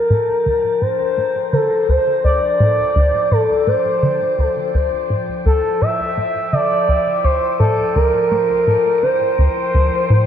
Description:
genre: ambient, sequencer-driven space music.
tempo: 84 BPM.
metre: 4/4.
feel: straight.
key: D minor.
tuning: A4 = 440 Hz.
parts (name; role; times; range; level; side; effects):
expressive synth lead; melody; 0.0-10.3 s; A4 to E5; -16 LUFS; equal; chorus, shimmer reverb, ping-pong delay.
sweeping resonant pad; sustained chords; 0.0-10.3 s; F3 to C5; -31 LUFS; left 2 dB; chorus, shimmer reverb.
wind-like tuned noise texture; texture; 0.0-10.3 s; G5; -35 LUFS; right 2 dB; built-in reverb, shimmer reverb.
plucky analog bass; riff; 0.1-10.3 s; D2 to D3; -18 LUFS; equal; lush chorus, cassette tape.
room: wet spring reverb, RT60 2.8 s.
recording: echo-heavy mix.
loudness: -14 LUFS.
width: side -9 dB against mid.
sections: 0.0-10.3 A section.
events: fade-in on analog synth pad 0.0-10.3; filter sweep on analog synth bass 0.0-10.3.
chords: 0.0 Dm7.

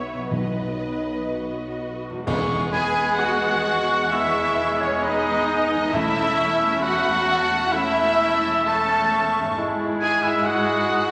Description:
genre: classical, slow romantic movement for symphony orchestra.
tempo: 60-69 BPM.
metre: 4/4.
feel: rubato.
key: E major.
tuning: A4 = 441 Hz.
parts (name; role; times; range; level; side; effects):
warm studio violin section; melody; 0.0-11.1 s; C#5 to A5; -28 LUFS; equal; none.
warm symphonic violin section; second line; 0.0-11.1 s; C#4 to B4; -32 LUFS; equal; none.
warm studio viola section; accompaniment; 0.0-11.1 s; G#3 to C#5; -36 LUFS; equal; none.
mellow French horn section; sustained chords; 0.0-9.9 s; F#3 to E4; -36 LUFS; equal; none.
concert harp; arpeggios; 0.0-11.1 s; E2 to E4; -43 LUFS; equal; none.
warm studio cello section; bass; 0.0-11.1 s; E2 to B3; -38 LUFS; equal; none.
warm studio double bass section; bass; 0.0-11.1 s; E1 to B1; -41 LUFS; equal; none.
warm tuba; bass; 0.0-2.0 s; B1; -39 LUFS; equal; none.
timpani; percussion; 0.3-7.2 s; E2 to B2; -34 LUFS; equal; none.
clear clarinet; second line; 2.3-11.1 s; B3 to E4; -37 LUFS; equal; none.
silver concert flute; second line; 2.3-11.1 s; G#5 to D#6; -32 LUFS; equal; none.
clear bassoon; accompaniment; 2.3-11.1 s; G#3 to A3; -29 LUFS; equal; none.
clash cymbals and concert bass drum; percussion; 2.3-4.1 s; none; -38 LUFS; equal; none.
warm oboe; second line; 2.7-11.1 s; C#5 to A5; -29 LUFS; equal; none.
clear trumpet; stabs; 2.7-11.1 s; C#4 to A4; -29 LUFS; equal; none.
room: wet scoring stage reverb, RT60 1.9 s.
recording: none.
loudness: -22 LUFS.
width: mono.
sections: 0.0-2.3 A section; 2.3-11.1 B section.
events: band accent 2.3-3.2.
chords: 0.3 B; 2.3 E; 5.9 A/E; 9.6 E/G#.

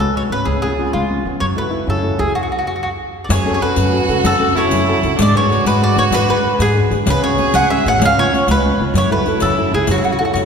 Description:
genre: italian folk, Italian serenade.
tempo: 127 BPM (dotted quarters).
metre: 6/8.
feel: straight.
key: F# minor.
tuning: A4 = 439 Hz.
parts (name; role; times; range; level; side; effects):
mandolin; melody; 0.0-10.4 s; E#4 to F#5; -18 LUFS; equal; none.
nylon-string guitar; accompaniment; 0.0-10.5 s; C#3 to B4; -20 LUFS; left 2 dB; none.
upright bass; bass; 0.0-10.5 s; G#1 to D3; -19 LUFS; equal; none.
clear violin; second line; 3.3-10.5 s; C#4 to G#4; -21 LUFS; right 4 dB; none.
riq; percussion; 3.3-10.5 s; none; -24 LUFS; left 3 dB; none.
room: wet church reverb, RT60 2.7 s.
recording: recorded in a church or concert hall.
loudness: -13 LUFS.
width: side -6 dB against mid.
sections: 0.0-3.3 A section; 3.3-10.5 A section.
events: stop 2.3-3.3.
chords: 0.5 C#7; 1.4 F#m7; 3.3 F#m; 5.2 G#dim; 7.1 C#7sus4; 8.0 C#7; 8.9 F#m7.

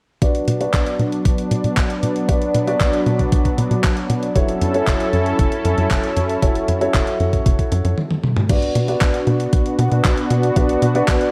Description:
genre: italo disco.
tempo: 116 BPM.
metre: 4/4.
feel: straight.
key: B minor.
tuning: A4 = 440 Hz.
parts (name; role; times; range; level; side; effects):
lush unison pad; sustained chords; 0.2-11.3 s; F#3 to A4; -24 LUFS; equal; chorus.
dark concert grand piano; stabs; 0.2-11.3 s; D4 to D5; -26 LUFS; equal; low-pass filter, delay.
tight sequencer bass; bass; 0.2-11.2 s; F#1 to B2; -23 LUFS; equal; none.
clean 12-bit digital drum machine; drums; 0.2-11.3 s; crash cymbal, handclaps, hi-hat, toms; -27 LUFS; equal; gated reverb.
electronic kick drum; drums; 0.2-11.2 s; none; -20 LUFS; equal; none.
room: light reverb.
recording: vinyl crackle.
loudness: -18 LUFS.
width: mono.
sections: 0.2-8.5 A section; 8.5-11.3 B section.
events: filter sweep on analog synth bass 0.2-8.5; filter sweep on grand piano 0.2-8.5, 8.5-11.3; drum fill 8.0-8.5.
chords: 0.2 Bm; 4.4 F#m7; 8.5 Bm.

